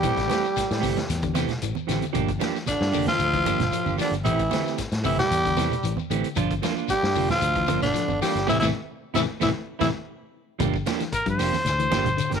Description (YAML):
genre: afrobeat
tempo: 114 BPM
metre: 4/4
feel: straight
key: G dorian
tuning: A4 = 437 Hz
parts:
  - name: growling tenor saxophone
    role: melody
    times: 0.0-9.9 s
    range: D4 to G4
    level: -25 LUFS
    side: left 2 dB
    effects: none
  - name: clear trombone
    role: second line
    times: 0.0-9.9 s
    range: D3 to G3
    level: -32 LUFS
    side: right 13 dB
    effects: none
  - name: clean electric guitar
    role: arpeggios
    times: 0.0-12.4 s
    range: A2 to F3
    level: -31 LUFS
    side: left 13 dB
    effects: none
  - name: clean electric guitar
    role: stabs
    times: 0.0-12.4 s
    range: E3 to G4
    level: -30 LUFS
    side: right 13 dB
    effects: none
  - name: fingered electric bass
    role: bass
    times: 0.0-12.4 s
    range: F1 to A2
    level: -28 LUFS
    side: left 1 dB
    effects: none
  - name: vintage drum kit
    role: drums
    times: 0.0-12.4 s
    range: hi-hat, kick drum, snare drum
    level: -32 LUFS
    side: left 1 dB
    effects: none
  - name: congas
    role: percussion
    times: 0.0-12.4 s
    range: none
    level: -32 LUFS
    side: right 7 dB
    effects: none
  - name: shekere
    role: percussion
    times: 0.0-12.4 s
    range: none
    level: -35 LUFS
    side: left 10 dB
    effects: none
  - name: breathy trumpet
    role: melody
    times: 11.1-12.4 s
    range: Bb4 to C5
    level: -24 LUFS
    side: left 2 dB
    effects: none
room: light reverb, studio ambience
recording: 1960s-style stereo with parts hard left and right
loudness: -22 LUFS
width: side -7 dB against mid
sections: 0.0-10.6 A section; 10.6-12.4 B section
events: band accent 8.5-10.6; trumpet solo 10.6-12.4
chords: 0.0 Am7; 2.1 Gm7; 4.3 Am7; 6.4 Gm7; 8.5 Am; 10.6 Gm7